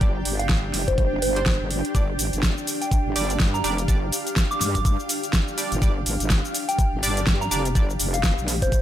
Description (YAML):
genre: bass house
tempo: 124 BPM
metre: 4/4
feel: swing 59% on 16ths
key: unclear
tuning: A4 = 439 Hz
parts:
  - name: band-passed chord stab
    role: stabs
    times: 0.0-7.8 s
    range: G3 to D5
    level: -31 LUFS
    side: right 2 dB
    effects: chorus, sidechain pumping, dub echo
  - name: wobble bass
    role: bass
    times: 0.0-8.7 s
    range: F1 to G2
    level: -27 LUFS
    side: equal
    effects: chorus, overdrive, sidechain pumping
  - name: big-room dance drum kit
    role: drums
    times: 0.0-8.8 s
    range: hi-hat, shaker, snare drum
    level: -26 LUFS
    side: equal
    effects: overdrive
  - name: electronic kick drum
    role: drums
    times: 0.0-8.8 s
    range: none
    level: -21 LUFS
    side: equal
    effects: none
  - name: granular cloud pad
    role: texture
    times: 0.0-8.8 s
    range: D4 to G5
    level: -30 LUFS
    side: equal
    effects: built-in reverb, sidechain pumping
  - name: soft synth bell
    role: melody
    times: 0.4-8.8 s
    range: C5 to D6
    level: -29 LUFS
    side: right 1 dB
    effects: chorus, phaser, dub echo
room: little or no reverb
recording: none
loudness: -20 LUFS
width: side -12 dB against mid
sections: 0.0-8.8 A section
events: none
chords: 0.0 G5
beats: | 0.01 0.49 0.98 1.46 | 1.95 2.43 2.92 3.40 | 3.88 4.37 4.85 5.33 | 5.82 6.30 6.79 7.27 | 7.75 8.24 8.72